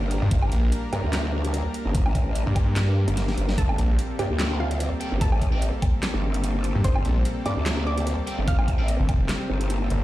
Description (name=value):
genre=heavy wobble dubstep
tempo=147 BPM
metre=4/4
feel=swing 55% on 16ths, half-time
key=G minor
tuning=A4 = 439 Hz
part: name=supersaw pad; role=sustained chords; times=0.0-10.0 s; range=G3 to Bb4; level=-31 LUFS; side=equal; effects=sidechain pumping
part: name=growl bass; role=bass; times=0.0-9.9 s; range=G1 to G2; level=-24 LUFS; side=equal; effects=distortion, chorus, overdrive
part: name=dubstep drum kit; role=drums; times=0.1-10.0 s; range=handclaps, hi-hat, snare drum, woodblock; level=-32 LUFS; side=equal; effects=none
part: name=snarling distorted saw bass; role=bass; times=0.2-4.0, 6.8-10.0 s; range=F1 to G2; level=-21 LUFS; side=equal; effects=distortion, overdrive
part: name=electronic kick drum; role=drums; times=0.3-9.2 s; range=none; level=-23 LUFS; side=equal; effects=none
part: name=wide unison pluck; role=melody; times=3.6-10.0 s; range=F4 to F6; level=-34 LUFS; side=right 1 dB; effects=ping-pong delay
part: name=distorted electric guitar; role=stabs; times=4.4-8.9 s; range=Bb3 to G5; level=-37 LUFS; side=right 1 dB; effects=overdrive, ping-pong delay
room=little or no reverb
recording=played on a big sound system in a bare room, large studio reverb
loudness=-21 LUFS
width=side -15 dB against mid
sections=0.0-10.0 A section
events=drum fill 3.2-3.6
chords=0.0 Gmadd9